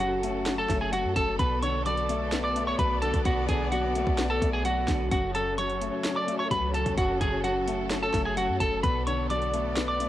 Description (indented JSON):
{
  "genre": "hip hop, trap",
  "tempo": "129 BPM",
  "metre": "4/4",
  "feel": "half-time",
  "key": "F# minor",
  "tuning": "A4 = 443 Hz",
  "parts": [
    { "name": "electric guitar at the edge of break-up", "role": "melody", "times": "0.0-10.1 s", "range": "F#4 to D6", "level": "-28 LUFS", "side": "right 1 dB", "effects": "cassette tape" },
    { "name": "dark grand piano", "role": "accompaniment", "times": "0.0-10.1 s", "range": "F#2 to C#4", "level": "-33 LUFS", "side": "left 8 dB", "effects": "none" },
    { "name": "warm studio string section", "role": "sustained chords", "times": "0.0-10.1 s", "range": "F#3 to D5", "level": "-34 LUFS", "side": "right 2 dB", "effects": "none" },
    { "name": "warm 808-style bass", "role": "bass", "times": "0.0-10.1 s", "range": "F#1 to F#2", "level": "-32 LUFS", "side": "right 1 dB", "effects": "none" },
    { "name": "trap drum kit", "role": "drums", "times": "0.0-10.1 s", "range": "handclaps, hi-hat, kick drum, snare drum", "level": "-30 LUFS", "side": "right 1 dB", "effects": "cassette tape" }
  ],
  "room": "little or no reverb",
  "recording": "home recording on cassette",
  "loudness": "-24 LUFS",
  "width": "side -13 dB against mid",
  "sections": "0.0-10.1 A section",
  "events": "none",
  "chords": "0.0 F#m; 1.4 Bm7; 5.1 F#m; 8.8 Bm7",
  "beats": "0.00 0.46 0.93 | 1.39 1.86 2.32 2.79 | 3.25 3.72 4.18 4.65 | 5.11 5.58 6.04 6.51 | 6.97 7.44 7.91 8.37 | 8.84 9.30 9.77"
}